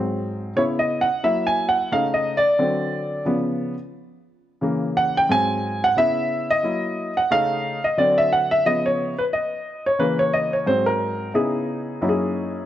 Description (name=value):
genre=hip hop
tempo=89 BPM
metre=4/4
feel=swing 58% on 16ths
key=C# dorian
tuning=A4 = 440 Hz
part: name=dark grand piano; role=solo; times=0.0-12.7 s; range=F#2 to G#5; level=-19 LUFS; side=equal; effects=none
room=moderate echo chamber reverb, RT60 1.9 s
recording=worn, warbling old tape, cassette tape, warbly pitch drift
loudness=-19 LUFS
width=side -12 dB against mid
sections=0.0-11.3 A section; 11.3-12.7 B section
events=grand piano solo 0.0-11.3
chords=0.0 G#7; 0.6 C#m7; 1.2 F#7; 1.9 Faug7/C#; 2.6 D7; 3.3 C#7; 4.6 C#dim7; 5.3 G#7; 6.0 C#m7; 6.6 F#6; 7.3 Faug7/C#; 8.0 D7; 8.7 C#7; 10.0 C#m13; 10.7 G#7; 11.3 C#m9; 12.0 F#13